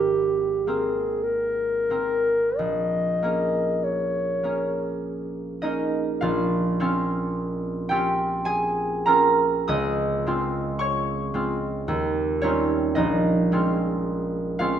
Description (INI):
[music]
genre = classical, impressionist duo for clarinet and harp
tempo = 42-58 BPM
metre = 3/4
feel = rubato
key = Bb dorian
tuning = A4 = 440 Hz
[part]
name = dark clarinet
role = melody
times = 0.0-5.0 s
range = G4 to Eb5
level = -23 LUFS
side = left 1 dB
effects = none
[part]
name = concert harp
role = accompaniment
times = 0.0-14.8 s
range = Ab1 to Eb6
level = -23 LUFS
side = right 1 dB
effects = none
[sound]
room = wet recital hall reverb, RT60 1.4 s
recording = none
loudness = -22 LUFS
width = side -9 dB against mid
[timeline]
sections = 0.0-6.2 A section; 6.2-14.8 A section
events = none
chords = 0.0 Abadd9; 2.6 Bbm7; 6.2 Bbmadd9; 9.7 Dbmaj9; 11.9 Eb13; 13.0 Bbm9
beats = 0.14 1.24 | 2.59 3.84 5.03 | 6.23 7.37 8.48 | 9.70 10.80 11.88 | 12.97 14.06